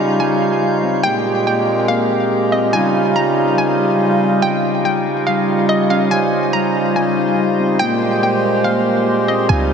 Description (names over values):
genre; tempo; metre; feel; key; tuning
hip hop; 142 BPM; 4/4; half-time; Db lydian; A4 = 440 Hz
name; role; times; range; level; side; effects
hollow square pluck; melody; 0.0-9.7 s; Eb5 to Bb5; -21 LUFS; equal; chorus, low-pass filter, tape echo
hand-pumped harmonium; sustained chords; 0.0-9.7 s; Bb2 to C5; -16 LUFS; right 1 dB; none
mellow electric guitar; arpeggios; 0.0-9.5 s; G3 to Bb4; -22 LUFS; left 4 dB; wide subtle chorus, low-pass filter, tape echo
drifting glass-harmonics texture; texture; 0.0-9.7 s; G3 to G6; -23 LUFS; right 1 dB; chorus, built-in reverb
clean 808-style bass; bass; 9.5-9.7 s; Db2; -15 LUFS; equal; none
room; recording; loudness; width
wet cathedral reverb, RT60 4.6 s; dreamy mix soaked in reverb; -14 LUFS; side -6 dB against mid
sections
0.0-9.5 A section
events
none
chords
0.0 Dbmaj9#11; 1.0 Abmaj9; 2.7 Dbmaj9#11; 4.4 Eb9; 6.1 Dbmaj9#11; 7.8 Abmaj9